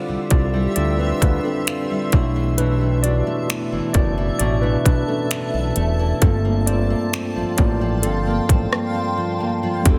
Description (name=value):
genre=contemporary R&B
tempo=66 BPM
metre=4/4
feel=straight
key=unclear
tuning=A4 = 440 Hz
part: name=mellow tine electric piano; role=accompaniment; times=0.0-10.0 s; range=G3 to D5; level=-26 LUFS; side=equal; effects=none
part: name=granular cloud pad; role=sustained chords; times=0.0-10.0 s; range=G4 to E6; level=-31 LUFS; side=equal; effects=built-in reverb
part: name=nylon-string guitar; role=arpeggios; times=0.0-10.0 s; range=G2 to G4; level=-28 LUFS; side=equal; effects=delay
part: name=worn celesta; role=texture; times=0.0-2.5 s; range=C5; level=-45 LUFS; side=equal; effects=none
part: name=fat analog bass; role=bass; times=0.1-10.0 s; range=E1 to D2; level=-23 LUFS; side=equal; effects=none
part: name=trap drum kit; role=drums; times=0.3-10.0 s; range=finger snaps, hi-hat, kick drum, rim click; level=-20 LUFS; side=equal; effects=soft clipping on snare
room=little or no reverb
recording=dense, heavily limited modern master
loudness=-20 LUFS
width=mono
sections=0.0-9.9 A section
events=tine electric piano solo 0.0-9.9; drums muted 8.9-9.9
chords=0.0 Dm11; 2.1 Bm11; 6.2 Gm11